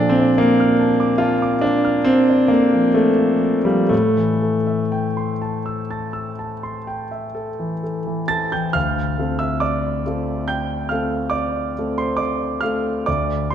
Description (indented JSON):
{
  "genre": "classical, impressionist solo piano",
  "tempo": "59-74 BPM",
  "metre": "5/4",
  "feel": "rubato",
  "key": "D minor",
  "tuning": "A4 = 441 Hz",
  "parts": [
    { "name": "warm concert grand piano", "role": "solo", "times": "0.0-13.5 s", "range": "D2 to A6", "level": "-17 LUFS", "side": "equal", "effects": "none" }
  ],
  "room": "moderate concert hall reverb, RT60 2.0 s",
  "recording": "none",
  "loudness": "-17 LUFS",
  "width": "side -9 dB against mid",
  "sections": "0.0-8.8 A section; 8.8-13.5 B section",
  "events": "none",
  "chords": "0.0 Bbmaj7; 3.9 Am7; 8.8 Dm7"
}